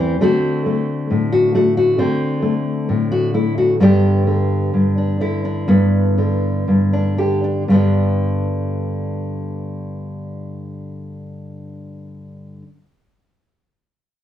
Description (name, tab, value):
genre	folk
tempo	58-68 BPM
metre	4/4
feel	straight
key	G major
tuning	A4 = 440 Hz
part	nylon-string guitar	accompaniment	0.0-12.7 s	E2 to G4	-16 LUFS	left 1 dB	none
room	wet studio reverb, RT60 0.7 s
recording	worn, warbling old tape, cassette tape, warbly pitch drift, small room ambience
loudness	-15 LUFS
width	side -11 dB against mid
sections	0.0-7.7 A section; 7.7-11.8 B section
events	slowing down 0.2-7.7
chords	0.2 D7; 3.8 G